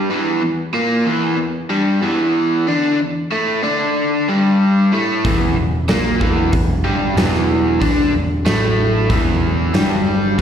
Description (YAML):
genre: blues rock power trio and southern rock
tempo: 93 BPM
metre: 4/4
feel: straight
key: E minor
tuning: A4 = 440 Hz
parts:
  - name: overdriven electric guitar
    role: riff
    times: 0.0-10.4 s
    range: E2 to D4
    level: -16 LUFS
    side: equal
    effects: slapback echo
  - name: overdriven picked electric bass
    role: bass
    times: 5.2-10.4 s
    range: E1 to D2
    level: -20 LUFS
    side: equal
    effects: none
  - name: huge arena drum kit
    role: drums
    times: 5.2-10.4 s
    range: hi-hat, kick drum, snare drum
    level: -19 LUFS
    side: equal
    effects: none
room: light reverb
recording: live gig heard through the venue's PA, recital hall reverb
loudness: -14 LUFS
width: side -8 dB against mid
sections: 0.0-10.4 A section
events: none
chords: 0.0 Em